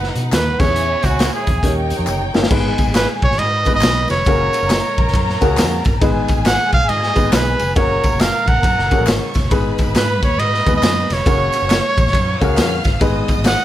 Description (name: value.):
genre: uptempo 1960s-style soul.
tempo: 137 BPM.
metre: 4/4.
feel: swing 63% on 8ths.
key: G# dorian.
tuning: A4 = 440 Hz.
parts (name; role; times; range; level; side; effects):
clear trumpet; melody; 0.0-13.6 s; F#4 to F#5; -19 LUFS; right 2 dB; none.
warm studio violin section; second line; 0.0-13.6 s; D#4 to E#6; -24 LUFS; equal; none.
vintage muted fingered electric bass; bass; 0.0-13.5 s; E#1 to B2; -21 LUFS; equal; none.
raw garage drum kit; drums; 0.0-13.6 s; crash cymbal, hi-hat, kick drum, ride cymbal, snare drum; -18 LUFS; equal; none.
congas; percussion; 0.2-13.6 s; none; -30 LUFS; right 1 dB; none.
tambourine and handclaps; percussion; 0.2-13.6 s; none; -31 LUFS; left 3 dB; none.
warm upright piano; accompaniment; 0.6-13.5 s; G#3 to B4; -21 LUFS; left 3 dB; none.
room: light reverb.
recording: none.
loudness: -14 LUFS.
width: side -12 dB against mid.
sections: 0.0-2.5 A section; 2.5-13.6 B section.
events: trumpet solo 0.0-2.5; drum fill 2.1-2.5.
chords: 0.0 B; 0.5 E6; 1.6 D#7; 2.5 G#m; 4.3 F#add9; 6.0 G#m; 7.8 F#add9; 9.5 G#m; 11.3 F#add9; 13.0 G#m.